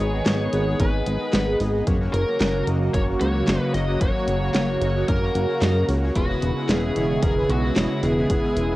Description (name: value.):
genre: synthwave.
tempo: 112 BPM.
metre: 4/4.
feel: straight.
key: unclear.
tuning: A4 = 440 Hz.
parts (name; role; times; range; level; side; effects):
bluesy overdriven lead guitar; melody; 0.0-8.8 s; F#4 to D#5; -27 LUFS; equal; distortion, cassette tape, analog delay.
phased analog pad; sustained chords; 0.0-8.8 s; C#3 to G#4; -25 LUFS; right 1 dB; phaser, chorus, sidechain pumping, cassette tape.
analog synth brass; stabs; 0.0-8.8 s; A#3 to F#5; -30 LUFS; left 1 dB; chorus, cassette tape.
chorused synth bass; bass; 0.0-8.8 s; E1 to F#2; -24 LUFS; equal; none.
pop drum kit; drums; 0.3-8.7 s; handclaps, hi-hat, snare drum; -25 LUFS; equal; cassette tape.
electronic kick drum; drums; 0.8-8.4 s; none; -24 LUFS; equal; cassette tape.
room: light reverb.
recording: home recording on cassette.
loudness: -19 LUFS.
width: side -17 dB against mid.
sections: 0.0-8.8 A section.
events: none.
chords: 0.0 G#m; 1.9 F#; 6.2 C#m7/E.